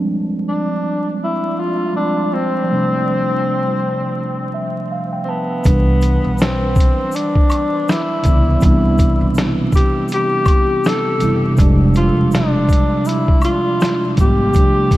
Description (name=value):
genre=lo-fi hip hop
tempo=81 BPM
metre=4/4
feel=swing 58% on 16ths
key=C major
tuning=A4 = 440 Hz
part: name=mellow tine electric piano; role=accompaniment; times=0.0-15.0 s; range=C3 to A5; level=-18 LUFS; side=right 1 dB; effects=medium stereo tremolo, cassette tape, low-pass filter
part: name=mellow tenor saxophone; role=melody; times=0.5-15.0 s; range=B3 to A4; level=-19 LUFS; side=left 1 dB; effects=low-pass filter
part: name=egg shaker and woodblock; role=percussion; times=5.6-15.0 s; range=none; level=-32 LUFS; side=left 1 dB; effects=none
part: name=upright bass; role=bass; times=5.7-14.5 s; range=E1 to Db2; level=-18 LUFS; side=equal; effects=none
part: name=lo-fi sampler-style drum kit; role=drums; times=5.7-15.0 s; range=hi-hat, kick drum, snare drum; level=-16 LUFS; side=equal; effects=none
room=moderate huge ambient reverb, RT60 7.9 s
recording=dreamy mix soaked in reverb, vinyl crackle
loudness=-14 LUFS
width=side -16 dB against mid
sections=0.0-5.7 A section; 5.7-15.0 B section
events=tine electric piano fill 4.2-5.7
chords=0.0 Fm6; 2.7 G7sus4; 5.7 Cmaj7; 11.6 Fm6